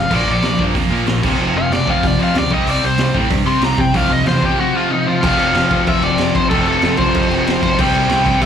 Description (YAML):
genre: punk rock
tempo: 188 BPM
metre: 4/4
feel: straight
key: unclear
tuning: A4 = 440 Hz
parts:
  - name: overdriven semi-hollow guitar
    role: melody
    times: 0.0-8.5 s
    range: Eb4 to C6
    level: -18 LUFS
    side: left 2 dB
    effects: slapback echo, digital delay
  - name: cranked stack guitar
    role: riff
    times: 0.0-8.5 s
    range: F2 to C4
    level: -22 LUFS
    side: left 9 dB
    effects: overdrive, slapback echo
  - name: distorted electric guitar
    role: riff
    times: 0.0-8.5 s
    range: F2 to C4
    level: -23 LUFS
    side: right 11 dB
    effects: overdrive, slapback echo
  - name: growling picked electric bass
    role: bass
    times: 0.0-8.5 s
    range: F1 to C3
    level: -21 LUFS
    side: equal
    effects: overdrive
  - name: distorted electric guitar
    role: riff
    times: 0.1-8.5 s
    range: F2 to C4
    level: -21 LUFS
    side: right 1 dB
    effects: overdrive, slapback echo
  - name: raw garage drum kit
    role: drums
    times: 0.1-8.5 s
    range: crash cymbal, hi-hat, kick drum, snare drum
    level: -20 LUFS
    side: right 1 dB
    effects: none
room: little or no reverb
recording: live gig heard through the venue's PA, club reverb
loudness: -13 LUFS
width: side -8 dB against mid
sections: 0.0-5.2 A section; 5.2-8.5 B section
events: overdriven electric guitar solo 0.0-5.2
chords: 0.1 Bb; 1.2 F5; 2.5 C5; 4.0 F5/C; 5.2 F5; 7.8 C5